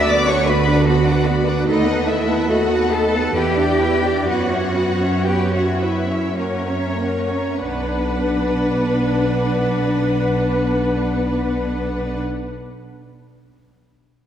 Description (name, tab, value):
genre	classical, slow romantic movement for string orchestra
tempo	46-76 BPM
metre	3/4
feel	rubato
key	B minor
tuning	A4 = 440 Hz
part	rich symphonic violin section	melody	0.0-12.2 s	B4 to D6	-28 LUFS	left 4 dB	none
part	rich chamber violin section	second line	0.0-12.2 s	B4 to D6	-27 LUFS	left 2 dB	none
part	clear symphonic viola section	accompaniment	0.0-12.2 s	A3 to D5	-21 LUFS	equal	none
part	clear chamber double bass section	bass	0.0-12.2 s	B1 to F#2	-22 LUFS	right 2 dB	none
part	rich symphonic cello section	bass	0.0-12.2 s	B3 to D5	-23 LUFS	right 1 dB	none
room	wet concert hall reverb, RT60 2.3 s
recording	dark, warm production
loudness	-16 LUFS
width	side -9 dB against mid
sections	0.0-7.6 A section; 7.6-11.4 B section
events	slowing down 0.5-7.6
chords	0.0 Bm/D; 1.7 B7/D#; 3.4 Em7; 4.3 F#7sus4; 6.4 F#7; 7.6 Bm